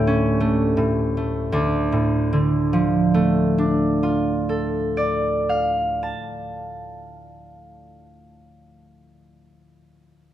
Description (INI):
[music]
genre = classical, solo harp piece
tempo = 51-64 BPM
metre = 3/4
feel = rubato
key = D minor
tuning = A4 = 442 Hz
[part]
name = concert harp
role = solo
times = 0.0-8.9 s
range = D2 to A5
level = -19 LUFS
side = equal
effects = none
[sound]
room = moderate recital hall reverb, RT60 1.6 s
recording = none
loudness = -18 LUFS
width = side -11 dB against mid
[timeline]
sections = 0.0-1.5 A section; 1.5-7.4 B section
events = slowing down 0.0-1.5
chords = 0.0 A7/D; 1.5 Dm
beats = 0.40 | 1.50 2.51 3.48 | 4.45 5.45 6.45